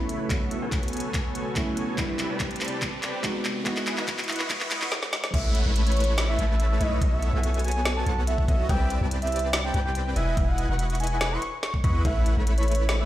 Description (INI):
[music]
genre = future bass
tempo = 143 BPM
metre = 4/4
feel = half-time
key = A lydian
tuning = A4 = 440 Hz
[part]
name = soft round pluck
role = accompaniment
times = 0.0-4.9 s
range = F#3 to D#5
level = -32 LUFS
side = right 1 dB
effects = chorus, sidechain pumping, ping-pong delay
[part]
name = ethereal airy pad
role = sustained chords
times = 0.0-5.3 s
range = C#3 to F#4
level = -41 LUFS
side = equal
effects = ensemble chorus, built-in reverb, vintage 12-bit sampler grit, sidechain pumping
[part]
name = dense compressed supersaw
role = riff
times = 0.0-13.1 s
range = A3 to C#6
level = -31 LUFS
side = equal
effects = sidechain pumping, low-pass filter
[part]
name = long sustained 808-style bass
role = bass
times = 0.0-13.1 s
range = E1 to E2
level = -26 LUFS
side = equal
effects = sidechain pumping, high-pass filter
[part]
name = riser and downlifter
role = sound effects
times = 0.8-8.7 s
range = none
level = -39 LUFS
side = right 1 dB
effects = none
[part]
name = trap drum kit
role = drums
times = 0.1-13.0 s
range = crash cymbal, handclaps, hi-hat, snare drum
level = -30 LUFS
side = equal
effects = studio reverb
[part]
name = electronic kick drum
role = drums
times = 0.3-12.1 s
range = none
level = -27 LUFS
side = equal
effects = studio reverb
[part]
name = soft octave-layered synth lead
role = melody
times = 5.3-13.1 s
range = C#5 to C#6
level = -31 LUFS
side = equal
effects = chorus, sidechain pumping, ping-pong delay
[sound]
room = light reverb, digital ambience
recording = played on a big sound system in a bare room, stone room reverb, high-pass filter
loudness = -23 LUFS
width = side -14 dB against mid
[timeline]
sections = 0.0-5.3 A section; 5.3-13.1 B section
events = build-up 0.0-5.3; drum fill 0.0-4.9, 4.9-5.3; filter sweep on supersaw synth 0.0-5.3; filter sweep 0.0-5.3; drop 5.3-13.1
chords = 0.3 B9sus4; 2.0 Cmaj7; 3.4 Emaj7; 5.3 A6; 7.0 B9sus4; 8.7 Cmaj7; 10.2 Emaj7; 12.1 A6